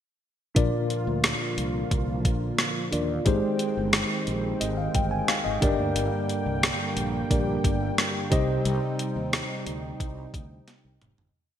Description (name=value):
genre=1980s-style pop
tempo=89 BPM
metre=4/4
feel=straight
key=Bb mixolydian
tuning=A4 = 441 Hz
part: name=mellow tine electric piano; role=accompaniment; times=0.5-11.4 s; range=G2 to Ab5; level=-28 LUFS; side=left 1 dB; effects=medium stereo tremolo
part: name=brassy analog pad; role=sustained chords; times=0.6-11.3 s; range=D3 to G5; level=-32 LUFS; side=right 1 dB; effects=chorus
part: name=fretless electric bass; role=bass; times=0.6-11.3 s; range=F1 to Eb2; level=-31 LUFS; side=equal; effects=none
part: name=clean 12-bit digital drum machine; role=drums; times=0.6-11.3 s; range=hi-hat, kick drum, rim click, snare drum, toms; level=-26 LUFS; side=equal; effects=gated reverb
room=moderate lush hall reverb, RT60 2.4 s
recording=bright 1980s-style digital production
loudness=-24 LUFS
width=side -10 dB against mid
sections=0.6-11.4 verse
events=fade-out 8.7-11.4; drum fill 10.7-11.4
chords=0.6 Bb; 3.3 Abmaj7; 5.6 Gm; 8.3 Cm